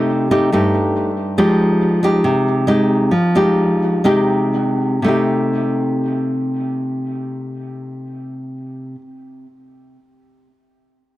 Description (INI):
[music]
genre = bossa nova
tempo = 119-140 BPM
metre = 4/4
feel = straight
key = C minor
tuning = A4 = 440 Hz
[part]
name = nylon-string guitar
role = solo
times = 0.0-9.0 s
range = G2 to G4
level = -15 LUFS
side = equal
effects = tape echo
[sound]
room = moderate spring reverb, RT60 1.1 s, studio reverb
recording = dry, gritty hardware recording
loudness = -14 LUFS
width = side -16 dB against mid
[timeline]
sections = 0.0-5.0 A section; 5.0-9.1 B section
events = slowing down 1.4-5.0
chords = 0.0 Cm6; 1.4 Fm9; 5.0 Cm6